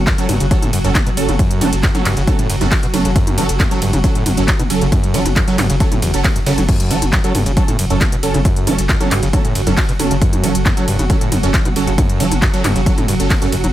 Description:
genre	driving peak-time techno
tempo	136 BPM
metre	4/4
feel	straight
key	F# phrygian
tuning	A4 = 440 Hz
part	saturated sub bass	bass	0.0-13.7 s	F#1	-20 LUFS	equal	tube saturation, sidechain pumping, low-pass filter
part	swarming drone	drone	0.0-13.7 s	F#3 to F#4	-25 LUFS	equal	built-in reverb, sidechain pumping
part	overdriven acid bass	riff	0.1-13.7 s	E2 to F#3	-21 LUFS	equal	distortion, sidechain pumping
part	breakbeat sampler-style drum kit	drums	0.1-13.6 s	hi-hat, snare drum	-31 LUFS	equal	none
part	electronic kick drum	drums	0.1-13.4 s	none	-16 LUFS	equal	none
part	techno drum kit	drums	0.1-13.7 s	crash cymbal, handclaps, hi-hat, ride cymbal, toms	-21 LUFS	equal	none
part	rave stab	stabs	0.2-13.5 s	F#3 to A4	-22 LUFS	right 5 dB	chorus, built-in reverb, sidechain pumping, dub echo
room	light reverb, digital ambience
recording	none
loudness	-13 LUFS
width	side -13 dB against mid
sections	0.0-13.7 A section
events	none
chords	0.0 F#m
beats	0.07 0.51 0.95 | 1.39 1.83 2.27 2.71 | 3.16 3.60 4.04 4.48 | 4.92 5.36 5.80 6.25 | 6.69 7.13 7.57 8.01 | 8.45 8.89 9.33 9.77 | 10.21 10.66 11.10 11.54 | 11.98 12.42 12.86 13.30

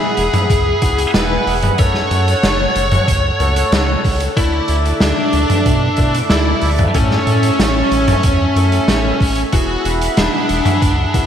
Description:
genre	synthwave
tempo	93 BPM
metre	4/4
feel	straight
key	A major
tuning	A4 = 439 Hz
part	fuzz lead guitar	melody	0.0-11.3 s	C#4 to C#5	-20 LUFS	equal	distortion, ping-pong delay
part	string machine, violins	second line	0.0-11.3 s	C#4 to C#5	-23 LUFS	equal	ensemble chorus, vintage 12-bit sampler grit
part	chorused pulse-width pad	sustained chords	0.0-11.3 s	G#4 to D6	-20 LUFS	right 1 dB	sidechain pumping
part	clear baby grand piano	stabs	0.0-11.3 s	A2 to A4	-26 LUFS	left 5 dB	lush chorus
part	round analog bass	bass	0.2-11.3 s	E1 to B2	-18 LUFS	equal	sidechain pumping
part	raw garage drum kit	drums	0.2-11.3 s	hi-hat, snare drum, toms	-18 LUFS	equal	gated reverb
part	electronic kick drum	drums	0.5-11.3 s	none	-17 LUFS	equal	none
room	moderate lush hall reverb, RT60 2.5 s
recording	bright 1980s-style digital production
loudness	-12 LUFS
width	side -9 dB against mid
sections	0.0-11.3 A section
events	none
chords	0.0 Eadd9; 1.8 F#m; 4.4 Dsus2; 6.9 A; 9.5 Eadd9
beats	0.50 1.14 | 1.79 2.43 3.08 3.72 | 4.37 5.01 5.66 6.30 | 6.95 7.59 8.24 8.88 | 9.53 10.17 10.82

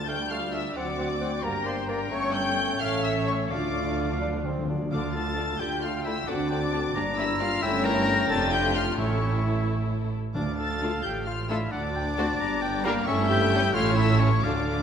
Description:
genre	quick classical-period movement for symphony orchestra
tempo	88 BPM (dotted quarters)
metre	6/8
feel	straight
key	D minor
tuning	A4 = 440 Hz
part	muted studio violin section	melody	0.0-14.8 s	Bb5 to Bb6	-32 LUFS	left 4 dB	none
part	muted chamber violin section	second line	0.0-14.8 s	E4 to G5	-35 LUFS	left 4 dB	none
part	silver concert flute	second line	0.0-14.8 s	Bb4 to Bb5	-34 LUFS	left 2 dB	none
part	muted studio viola section	accompaniment	0.0-14.8 s	F#3 to A4	-34 LUFS	right 1 dB	none
part	mellow French horn section	sustained chords	0.0-14.3 s	A3 to F#4	-34 LUFS	left 4 dB	none
part	muted studio cello section	bass	0.0-14.8 s	D2 to D3	-34 LUFS	right 4 dB	none
part	muted studio double bass section	bass	0.0-14.8 s	F1 to D2	-31 LUFS	right 3 dB	none
part	warm clarinet	second line	0.1-14.8 s	Bb3 to G5	-34 LUFS	left 3 dB	none
part	warm oboe	second line	0.1-14.8 s	C#5 to Bb5	-34 LUFS	equal	none
part	mellow bassoon	accompaniment	0.1-4.9 s	A3 to D4	-36 LUFS	right 1 dB	none
part	timpani	percussion	3.5-5.6, 9.0-11.0, 14.4-14.8 s	A2 to D3	-36 LUFS	equal	none
room	wet concert hall reverb, RT60 2.3 s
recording	none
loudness	-24 LUFS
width	side -8 dB against mid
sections	0.0-4.9 A section; 4.9-14.8 B section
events	timpani fill 3.5-4.9, 14.4-14.8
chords	0.0 Dm; 0.8 D7; 1.4 Gm; 2.1 A7/G; 2.8 A; 3.5 Dm; 6.3 D7; 7.0 Gm; 7.6 A7/G; 8.3 Dm/F; 9.0 A; 10.4 Dm; 11.7 D; 12.4 Gm; 13.1 A7/G; 13.7 A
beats	0.09 | 0.76 1.44 | 2.12 2.80 | 3.51 4.21 | 4.92 5.60 | 6.28 6.95 | 7.62 8.30 | 8.98 9.66 | 10.35 11.04 | 11.72 12.40 | 13.07 13.75 | 14.43

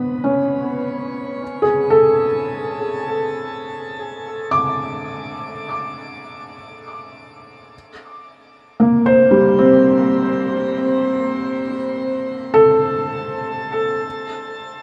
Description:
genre	ambient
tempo	free time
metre	none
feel	none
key	unclear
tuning	A4 = 441 Hz
part	felt-muted upright piano	solo	0.0-14.8 s	G3 to D6	-19 LUFS	equal	diffuse ambient delay
room	wet shimmer reverb, RT60 7.1 s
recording	none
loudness	-18 LUFS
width	mono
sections	0.0-1.4 A section; 1.4-14.1 B section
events	none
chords	0.0 G#madd11 (rootless); 1.4 D5; 7.7 Gm; 14.1 N.C.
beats	free time

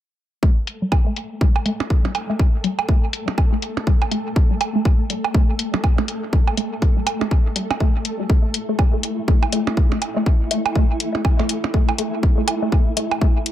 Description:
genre	minimal techno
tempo	122 BPM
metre	4/4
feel	swing 60% on 16ths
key	unclear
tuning	A4 = 440 Hz
part	resonant blip pluck	riff	0.4-13.3 s	G3 to A3	-26 LUFS	equal	phaser, sidechain pumping, analog delay
part	electronic kick drum	drums	0.4-13.3 s	none	-16 LUFS	equal	none
part	flickering grainy texture	texture	0.8-13.5 s	A3 to A4	-28 LUFS	left 1 dB	built-in reverb, sidechain pumping
part	electronic hi-hat	drums	0.7-13.5 s	none	-25 LUFS	left 5 dB	low-pass filter on hats, low-pass filter on room
part	percussion blips	percussion	0.9-13.2 s	none	-26 LUFS	right 7 dB	dub echo
room	light reverb, digital ambience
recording	echo-heavy mix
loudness	-17 LUFS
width	side -12 dB against mid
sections	0.4-13.5 A section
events	filter sweep on synth pluck 0.4-13.5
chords	0.4 A5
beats	| 0.43 0.92 1.41 1.90 | 2.39 2.89 3.38 3.87 | 4.36 4.85 5.34 5.84 | 6.33 6.82 7.31 7.80 | 8.30 8.79 9.28 9.77 | 10.26 10.76 11.25 11.74 | 12.23 12.72 13.21

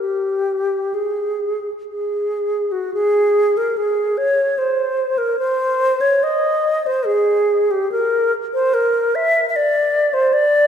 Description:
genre	classical, free, expressive piece for unaccompanied alto flute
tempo	52-77 BPM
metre	3/4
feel	rubato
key	unclear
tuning	A4 = 439 Hz
part	alto flute	solo	0.0-10.7 s	Gb4 to Fb5	-16 LUFS	equal	none
room	wet church reverb, RT60 2.6 s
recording	minimal, uncompressed stereo recording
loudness	-16 LUFS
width	side -8 dB against mid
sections	0.0-2.9 A section; 2.9-10.7 B section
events	none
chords	none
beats	| 0.03 0.96 1.91 | 2.94 3.78 4.59 | 5.40 6.23 7.06 | 7.92 8.76 9.55 | 10.34

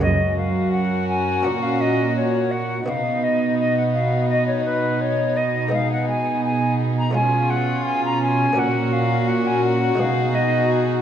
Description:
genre	classical, baroque-style concerto movement with solo episodes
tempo	84 BPM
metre	4/4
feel	straight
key	F# major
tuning	A4 = 440 Hz
part	silver concert flute	melody	0.0-10.7 s	B4 to A#5	-23 LUFS	left 1 dB	none
part	warm chamber violin section	melody	0.0-11.0 s	F#4 to A#4	-33 LUFS	left 2 dB	none
part	warm chamber violin section	second line	0.0-11.0 s	D#4 to F#4	-24 LUFS	left 4 dB	none
part	buff-stop harpsichord	accompaniment	0.0-11.0 s	F#2 to F#4	-31 LUFS	equal	none
part	dark chamber viola section	accompaniment	0.0-11.0 s	B3 to D#4	-27 LUFS	right 3 dB	none
part	rich chamber cello section	bass	0.0-11.0 s	F#2 to B2	-23 LUFS	right 3 dB	none
room	wet recital hall reverb, RT60 1.7 s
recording	dark, warm production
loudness	-18 LUFS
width	side -9 dB against mid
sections	0.0-11.0 A section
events	none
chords	0.0 F#; 1.5 F#/A#; 2.9 B; 5.7 G#m/B; 7.2 C#7/B; 8.6 F#/A#; 10.0 G#m7/B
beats	| 0.03 0.74 1.46 2.17 | 2.89 3.60 4.31 5.02 | 5.73 6.45 7.16 7.87 | 8.58 9.29 10.00 10.71

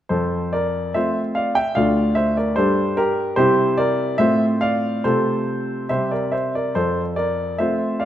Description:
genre	classical-period piano sonatina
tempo	72 BPM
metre	2/4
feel	rubato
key	F major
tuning	A4 = 439 Hz
part	clear grand piano	solo	0.1-8.1 s	D2 to G5	-18 LUFS	equal	none
room	moderate recital hall reverb, RT60 1.6 s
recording	none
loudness	-18 LUFS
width	side -11 dB against mid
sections	0.1-8.1 A section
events	none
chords	0.1 F; 1.8 Dm; 2.6 Gm; 3.4 C; 4.2 F/A; 5.0 F/C; 5.9 C5; 6.7 F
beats	| 0.11 0.95 | 1.76 2.56 | 3.37 4.19 | 5.04 5.89 | 6.75 7.59

